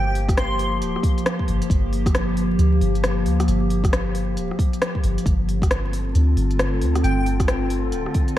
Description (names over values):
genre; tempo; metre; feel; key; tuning
future garage; 135 BPM; 4/4; swing 63% on 16ths; G minor; A4 = 440 Hz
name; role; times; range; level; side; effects
warbly tape-like pad; sustained chords; 0.0-8.4 s; D3 to G4; -24 LUFS; left 1 dB; chorus, built-in reverb, phaser, sidechain pumping
soft 808-style bass; bass; 0.0-8.1 s; D1 to D2; -21 LUFS; equal; tube saturation, sidechain pumping
airy dreamy lead; melody; 0.1-0.7, 7.0-7.2 s; G5 to C6; -29 LUFS; equal; chorus, cassette tape, ping-pong delay
deep house drum kit; drums; 0.2-8.3 s; hi-hat, rim click; -27 LUFS; equal; none
electronic kick drum; drums; 0.3-8.3 s; none; -21 LUFS; equal; none
wind-like tuned noise texture; texture; 5.8-8.4 s; A3 to A4; -35 LUFS; equal; built-in reverb, lush chorus
room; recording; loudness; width
light reverb, digital ambience; vinyl crackle; -18 LUFS; side -13 dB against mid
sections
0.0-8.4 A section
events
none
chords
0.0 Gm7; 5.3 Dm7